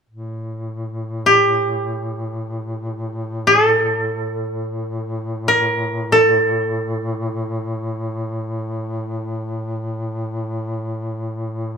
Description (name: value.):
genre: caucasian folk.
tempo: free time.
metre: none.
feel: none.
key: unclear.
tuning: A4 = 445 Hz.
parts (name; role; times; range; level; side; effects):
warm duduk; drone; 0.1-11.8 s; A2; -25 LUFS; left 1 dB; none.
koto; melody; 1.3-9.0 s; G4 to Bb4; -16 LUFS; equal; none.
room: moderate recital hall reverb, RT60 1.5 s.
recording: minimal, uncompressed stereo recording.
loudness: -18 LUFS.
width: side -6 dB against mid.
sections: 0.1-11.8 A section.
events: none.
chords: none.